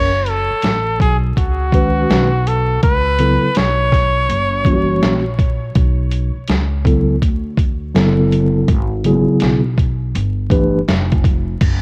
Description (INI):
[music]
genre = hip hop, jazz-hop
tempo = 82 BPM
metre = 4/4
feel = swing 64% on 16ths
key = unclear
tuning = A4 = 445 Hz
[part]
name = breathy trumpet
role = melody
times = 0.0-5.4 s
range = F#4 to C#5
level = -21 LUFS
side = equal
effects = cassette tape, tape echo
[part]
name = mellow tine electric piano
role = accompaniment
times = 0.0-10.8 s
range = C#3 to B4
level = -17 LUFS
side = equal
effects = none
[part]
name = upright bass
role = bass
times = 0.0-11.8 s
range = F1 to D2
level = -22 LUFS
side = equal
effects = none
[part]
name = dusty soul sampler-style drum kit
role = drums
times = 0.3-11.8 s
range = crash cymbal, hi-hat, kick drum, snare drum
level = -19 LUFS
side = equal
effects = none
[sound]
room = digital ambience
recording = home recording on cassette, vinyl crackle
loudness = -16 LUFS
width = mono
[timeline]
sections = 0.0-11.6 A section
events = none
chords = 0.0 F#m69; 2.8 B9sus4; 4.3 F#7b9; 5.8 Bm11; 8.7 G#m11; 10.1 G9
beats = 0.63 1.36 2.10 | 2.83 3.56 4.29 5.02 | 5.75 6.49 7.22 7.95 | 8.68 9.41 10.15 10.88 | 11.61